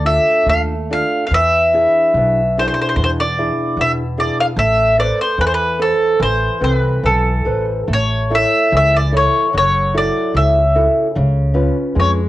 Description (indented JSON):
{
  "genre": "fado-style ballad",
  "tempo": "73 BPM",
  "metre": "2/4",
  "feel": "rubato",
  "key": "A harmonic minor, A major from 7.9 s",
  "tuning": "A4 = 441 Hz",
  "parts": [
    { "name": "mandolin", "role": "melody", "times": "0.0-12.1 s", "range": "A4 to F5", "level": "-15 LUFS", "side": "equal", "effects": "none" },
    { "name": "nylon-string guitar", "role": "accompaniment", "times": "0.0-12.3 s", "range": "B2 to C#5", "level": "-20 LUFS", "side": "equal", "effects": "cassette tape" },
    { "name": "upright bass", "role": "bass", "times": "0.0-12.3 s", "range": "F#1 to E#2", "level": "-18 LUFS", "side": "equal", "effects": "none" }
  ],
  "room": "light reverb",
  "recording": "home recording on cassette",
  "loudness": "-13 LUFS",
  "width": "side -15 dB against mid",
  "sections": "0.0-7.9 A section; 7.9-12.3 B section",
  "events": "none",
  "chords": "0.0 Dm; 1.3 E7; 4.6 Amadd9; 7.9 A; 9.5 F#m7; 11.2 C#7",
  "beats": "0.46 | 1.31 2.15 | 2.97 3.78 | 4.58 5.39 | 6.21 7.04 | 7.89 8.73 | 9.55 10.36 | 11.16 11.96"
}